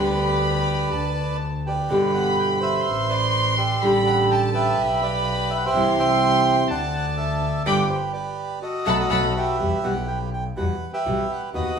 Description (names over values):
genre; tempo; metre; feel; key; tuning
tango; 124 BPM; 4/4; rubato; G major; A4 = 441 Hz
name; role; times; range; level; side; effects
bandoneon; melody; 0.0-11.8 s; F#4 to A5; -23 LUFS; right 3 dB; none
warm chamber violin section; second line; 0.0-9.3 s; F#5 to D6; -26 LUFS; left 2 dB; none
nylon-string guitar; accompaniment; 0.0-11.8 s; B2 to G4; -24 LUFS; equal; none
clear double bass; bass; 0.0-11.7 s; G1 to E2; -27 LUFS; equal; none
room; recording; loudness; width
wet stone room reverb, RT60 1.0 s; band playing live in one room, studio reverb; -19 LUFS; side -6 dB against mid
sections
0.0-9.6 A section; 9.6-11.8 B section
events
band accent 7.7-9.6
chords
0.0 G/D; 1.9 G; 2.9 Amadd9; 3.8 Dsus4/A; 4.8 G/B; 5.7 C; 6.7 D; 7.7 G; 8.6 B7; 9.6 Emadd9